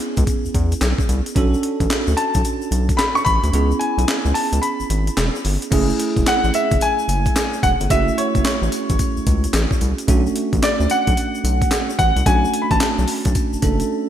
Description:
R&B, new jack swing; 110 BPM; 4/4; swing 64% on 16ths; B dorian; A4 = 441 Hz
bell-like tine electric piano; accompaniment; 0.0-14.1 s; A3 to A4; -23 LUFS; right 4 dB; analog chorus
breakbeat sampler-style drum kit; drums; 0.0-13.9 s; crash cymbal, handclaps, hi-hat, kick drum, snare drum, tambourine; -20 LUFS; equal; gated reverb
tube shaker; percussion; 0.0-13.9 s; -35 LUFS; left 6 dB
round analog bass; bass; 0.2-13.8 s; E1 to E2; -20 LUFS; equal
clear concert grand piano; melody; 2.2-13.8 s; C#5 to C#6; -21 LUFS; left 1 dB
moderate lush hall reverb, RT60 2.0 s; bright 1980s-style digital production; -16 LUFS; side -10 dB against mid
0.0-5.7 A section; 5.7-14.1 B section
kick muted 3.5-5.7; break 13.9
0.0 Amaj7 (rootless); 1.4 Bm7; 3.5 C#m7; 5.7 F#m7; 10.1 Bm7
0.27 0.81 | 1.36 1.90 2.45 2.99 | 3.54 4.08 4.63 5.17 | 5.72 6.27 6.81 7.36 | 7.90 8.45 8.99 9.54 | 10.08 10.63 11.18 11.72 | 12.27 12.81 13.36 13.90

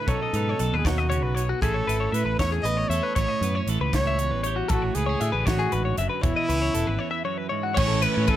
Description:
math rock and midwest emo; 78 BPM (dotted quarters); 6/8; straight; A4 = 440 Hz
clear trumpet; melody; 0.0-8.4 s; E4 to D#5; -28 LUFS; equal; tape echo
twelve-string electric guitar; accompaniment; 0.0-8.4 s; E2 to A4; -31 LUFS; right 10 dB
twelve-string electric guitar; arpeggios; 0.0-8.4 s; F#4 to E5; -29 LUFS; left 6 dB
picked electric bass; bass; 0.1-8.3 s; E1 to A2; -26 LUFS; equal
crisp fusion drum kit; drums; 0.1-8.4 s; crash cymbal, hi-hat, kick drum, ride cymbal, snare drum; -29 LUFS; equal
overdriven electric guitar; riff; 7.8-8.4 s; A2 to E4; -28 LUFS; right 2 dB
light reverb; -22 LUFS; side -12 dB against mid
0.0-7.8 A section
break 7.0-7.8
0.1 B9; 1.6 Amaj7; 3.2 A7; 4.7 Dmaj9/A; 6.2 E6; 7.8 Amaj7
| 0.07 0.85 | 1.62 2.39 | 3.16 3.93 | 4.70 5.47 | 6.23 7.00 | 7.77

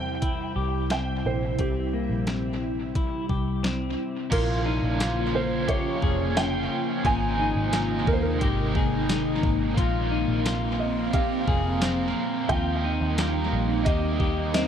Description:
dream pop; 88 BPM; 4/4; straight; A4 = 438 Hz
felt-muted upright piano; melody; 0.0-14.7 s; G4 to Ab5; -31 LUFS; right 2 dB; dub echo
ethereal airy pad; sustained chords; 0.0-14.7 s; C3 to F4; -29 LUFS; equal; ensemble chorus, built-in reverb
semi-hollow electric guitar; arpeggios; 0.0-14.7 s; Bb3 to Ab4; -31 LUFS; left 6 dB; lush chorus, dub echo
vintage muted picked electric bass; bass; 0.0-14.7 s; F1 to E2; -29 LUFS; equal
detuned 8-bit digital drum machine; drums; 0.2-14.7 s; crash cymbal, hi-hat, kick drum, snare drum, tambourine; -28 LUFS; equal; dub echo
biting overdriven guitar; accompaniment; 4.3-14.7 s; Bb2 to C5; -32 LUFS; right 4 dB; tremolo, lush chorus
light reverb; echo-heavy mix; -23 LUFS; side -8 dB against mid
0.0-4.3 A section; 4.3-14.7 B section
0.0 C; 4.3 Bbmadd9; 7.0 Abadd9; 9.8 Bbsus2; 12.5 Eb
0.23 0.91 | 1.59 2.27 2.95 3.64 | 4.32 5.00 5.68 6.36 | 7.04 7.73 8.41 9.09 | 9.77 10.45 11.14 11.82 | 12.50 13.18 13.86 14.54

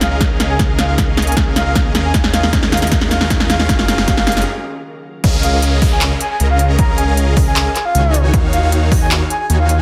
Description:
future bass; 155 BPM; 4/4; half-time; Db major; A4 = 440 Hz
breathy flute-like synth lead; melody; 0.0-9.8 s; F5 to Bb5; -24 LUFS; equal; chorus, cassette tape, sidechain pumping, dub echo
ethereal airy pad; sustained chords; 0.1-5.2 s; Db3 to F5; -34 LUFS; equal
supersaw chords; riff; 0.0-9.8 s; Eb3 to Bb5; -24 LUFS; equal; sidechain pumping
detuned saw bass; bass; 0.0-9.8 s; Gb1 to Eb2; -19 LUFS; equal; chorus, sidechain pumping
big-room dance drum kit; drums; 0.0-9.8 s; crash cymbal, handclaps, hi-hat, snare drum; -20 LUFS; equal; overdrive
riser and downlifter; sound effects; 1.9-8.3 s; -32 LUFS; equal
electronic kick drum; drums; 0.2-9.0 s; -19 LUFS; equal; overdrive
light reverb, digital ambience; dense, heavily limited modern master; -14 LUFS; mono
0.0-5.2 A section; 5.2-9.8 B section
build-up 0.0-5.2; drum fill 0.0-4.5; break 4.5-5.2; drop 5.2-9.8
0.0 Db69; 1.9 Ebm7; 3.7 Gbmaj7; 5.2 Db69; 8.1 Ebm7
0.21 | 0.59 0.98 1.37 1.75 | 2.14 2.53 2.92 3.30 | 3.69 4.08 4.46 4.85 | 5.24 5.63 6.01 6.40 | 6.79 7.17 7.56 7.95 | 8.34 8.72 9.11 9.50

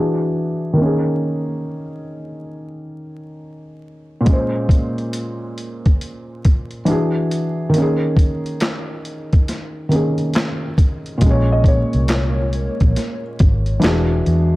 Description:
lo-fi hip hop; 69 BPM; 4/4; swing 64% on 16ths; A4 = 440 Hz
felt-muted upright piano; accompaniment; 0.0-14.6 s; Bb2 to Db5; -20 LUFS; equal; low-pass filter
boom bap sampler-style drum kit; drums; 4.3-14.5 s; handclaps, hi-hat, kick drum, snare drum; -16 LUFS; equal
hollow soft pad; sustained chords; 12.0-14.6 s; E3 to Db5; -28 LUFS; equal; chorus
vintage muted fingered electric bass; bass; 11.2-14.6 s; E1 to E2; -18 LUFS; equal; tube saturation
dark upright piano; melody; 11.5-13.2 s; Db5 to Eb5; -26 LUFS; equal; analog delay
little or no reverb; dry, gritty hardware recording, vinyl crackle; -16 LUFS; side -19 dB against mid
0.0-11.2 A section; 11.2-14.6 B section
filter sweep on felt piano 0.0-11.2
0.0 E9; 0.8 Eb7sus4; 4.3 Bbm9; 6.9 E9; 7.7 Eb7sus4; 11.2 Bbm9; 13.8 E9
| 0.79 1.66 2.53 3.40 | 4.27 5.14 6.01 6.88 | 7.75 8.62 9.48 10.35 | 11.22 12.09 12.96 13.83

